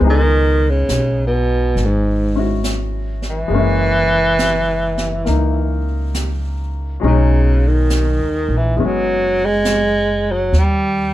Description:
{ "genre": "jazz ballad", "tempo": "68 BPM", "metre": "4/4", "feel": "swing 68% on 8ths", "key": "unclear", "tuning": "A4 = 437 Hz", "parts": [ { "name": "bright upright piano", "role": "accompaniment", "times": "0.0-10.6 s", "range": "F#3 to B#4", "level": "-23 LUFS", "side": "left 6 dB", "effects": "none" }, { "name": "upright bass", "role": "bass", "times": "0.0-11.1 s", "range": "F#1 to D#2", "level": "-18 LUFS", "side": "equal", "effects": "none" }, { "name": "jazz brush drum kit", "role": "drums", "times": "0.0-11.1 s", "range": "brushed snare drum, hi-hat, snare drum", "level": "-27 LUFS", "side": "right 2 dB", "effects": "none" }, { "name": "mellow baritone saxophone", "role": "melody", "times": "0.1-11.1 s", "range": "G#2 to G#3", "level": "-17 LUFS", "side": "right 1 dB", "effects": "none" } ], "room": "light reverb", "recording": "dark, warm production", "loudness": "-14 LUFS", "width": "side -14 dB against mid", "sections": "0.0-11.1 A section", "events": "none", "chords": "0.0 C#m9; 3.5 F#7; 7.0 B6; 10.5 D#" }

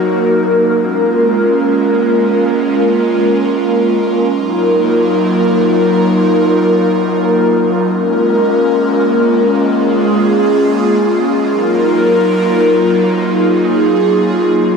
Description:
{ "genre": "hip hop", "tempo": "free time", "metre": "none", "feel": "none", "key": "Db major", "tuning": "A4 = 440 Hz", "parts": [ { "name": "airy breathy pad", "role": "solo", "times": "0.0-14.8 s", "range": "Gb3 to Bb4", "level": "-10 LUFS", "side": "equal", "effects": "chorus" } ], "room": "moderate lush hall reverb, RT60 2.7 s", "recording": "none", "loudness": "-10 LUFS", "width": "side -5 dB against mid", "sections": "0.0-7.9 A section; 7.9-14.8 B section", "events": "none", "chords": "0.0 Ebm; 0.8 Db6; 4.3 Ebmadd9; 7.9 Db6; 11.5 Ebmadd9" }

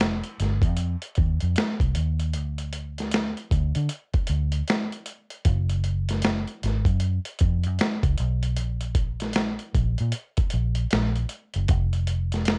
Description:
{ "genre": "R&B, neo-soul", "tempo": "77 BPM", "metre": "4/4", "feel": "swing 62% on 16ths", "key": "unclear", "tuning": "A4 = 440 Hz", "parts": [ { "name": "vintage muted fingered electric bass", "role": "bass", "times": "0.0-12.6 s", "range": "F1 to D3", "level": "-27 LUFS", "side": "equal", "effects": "none" }, { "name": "boom bap sampler-style drum kit", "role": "drums", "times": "0.0-12.6 s", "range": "finger snaps, hi-hat, kick drum, snare drum", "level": "-27 LUFS", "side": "equal", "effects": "none" } ], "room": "little or no reverb", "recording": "worn, warbling old tape, cassette tape, warbly pitch drift", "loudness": "-25 LUFS", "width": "mono", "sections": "0.0-12.6 A section", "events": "none", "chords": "none" }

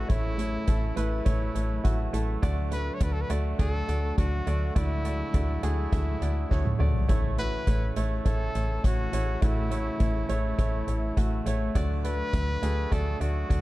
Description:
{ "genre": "piano-driven pop", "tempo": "103 BPM", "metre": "4/4", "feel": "straight", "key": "A major", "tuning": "A4 = 435 Hz", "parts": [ { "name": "clear trumpet", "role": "melody", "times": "0.0-13.6 s", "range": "E4 to C#5", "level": "-35 LUFS", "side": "left 1 dB", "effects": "none" }, { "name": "bright concert grand piano", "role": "accompaniment", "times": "0.0-13.6 s", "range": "A2 to E5", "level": "-33 LUFS", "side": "right 2 dB", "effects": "none" }, { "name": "rich studio string section", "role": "sustained chords", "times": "0.0-13.6 s", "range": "C#3 to A3", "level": "-39 LUFS", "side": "left 1 dB", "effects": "none" }, { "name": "slap-like FM bass", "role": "bass", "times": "0.0-13.6 s", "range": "A1 to D2", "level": "-28 LUFS", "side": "equal", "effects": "none" }, { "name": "soft-mallet drum kit", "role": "drums", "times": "0.1-13.6 s", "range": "hi-hat, kick drum, snare drum, toms", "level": "-28 LUFS", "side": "equal", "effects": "none" } ], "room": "studio reverb", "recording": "dark, warm production", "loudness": "-25 LUFS", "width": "side -17 dB against mid", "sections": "0.0-13.6 A section", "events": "drum fill 6.5-7.1", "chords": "0.0 A; 2.4 D; 7.1 A; 11.8 D" }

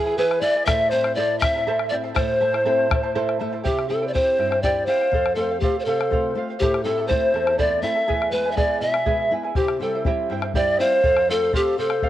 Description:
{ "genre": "andean folk, Andean ensemble", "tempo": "81 BPM (dotted quarters)", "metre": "6/8", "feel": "straight", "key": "A minor", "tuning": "A4 = 443 Hz", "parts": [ { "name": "bright polished pan flute", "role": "melody", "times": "0.0-12.1 s", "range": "G4 to E5", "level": "-21 LUFS", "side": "equal", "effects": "cassette tape" }, { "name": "mellow quena", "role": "second line", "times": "0.0-12.1 s", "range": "G4 to G#5", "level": "-30 LUFS", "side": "left 7 dB", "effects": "cassette tape" }, { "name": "charango", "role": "accompaniment", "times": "0.0-12.1 s", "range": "E4 to A5", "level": "-27 LUFS", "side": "right 6 dB", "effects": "cassette tape" }, { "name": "flamenco guitar", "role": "accompaniment", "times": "0.0-12.1 s", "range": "E2 to E5", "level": "-31 LUFS", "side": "left 5 dB", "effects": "cassette tape" }, { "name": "bombo", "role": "percussion", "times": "0.3-12.1 s", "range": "none", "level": "-25 LUFS", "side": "left 2 dB", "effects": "none" } ], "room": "light reverb", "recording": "home recording on cassette", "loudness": "-19 LUFS", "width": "side -13 dB against mid", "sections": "0.0-3.6 A section; 3.6-12.1 B section", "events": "nylon-string guitar fill 2.9-3.6", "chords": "0.0 E; 0.7 Am; 3.6 C; 5.1 F; 6.6 Am; 8.1 E; 9.6 C; 11.0 F" }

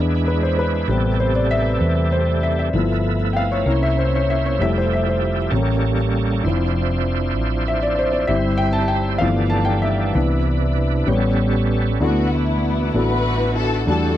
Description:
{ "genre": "slow gospel", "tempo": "65 BPM (dotted quarters)", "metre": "6/8", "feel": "straight", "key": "C major", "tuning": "A4 = 438 Hz", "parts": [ { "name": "warm baby grand piano", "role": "accompaniment", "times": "0.0-14.2 s", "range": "D3 to A5", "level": "-21 LUFS", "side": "left 3 dB", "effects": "none" }, { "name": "bright tonewheel organ", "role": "sustained chords", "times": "0.0-14.2 s", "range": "C3 to F#5", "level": "-25 LUFS", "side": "right 4 dB", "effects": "slow rotary speaker, overdrive, chorus vibrato" }, { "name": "hollow-body short-scale fingered electric bass", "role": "bass", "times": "0.0-14.2 s", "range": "F1 to E2", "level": "-20 LUFS", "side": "right 1 dB", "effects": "none" }, { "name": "warm studio string section", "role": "melody", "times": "12.0-14.2 s", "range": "A3 to B4", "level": "-22 LUFS", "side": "left 2 dB", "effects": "none" } ], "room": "little or no reverb", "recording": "dry, close 1970s-style studio recording", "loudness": "-17 LUFS", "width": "side -12 dB against mid", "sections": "0.0-12.0 A section; 12.0-14.2 B section", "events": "grand piano solo 0.0-12.0", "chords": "0.0 E7; 0.9 Am9; 2.7 G13; 3.7 C7b9; 4.6 Fmaj9; 5.5 A7b9; 6.4 Dm9/F; 8.3 C/G; 9.2 G13; 10.2 Cmaj9; 11.1 A9; 12.0 D69" }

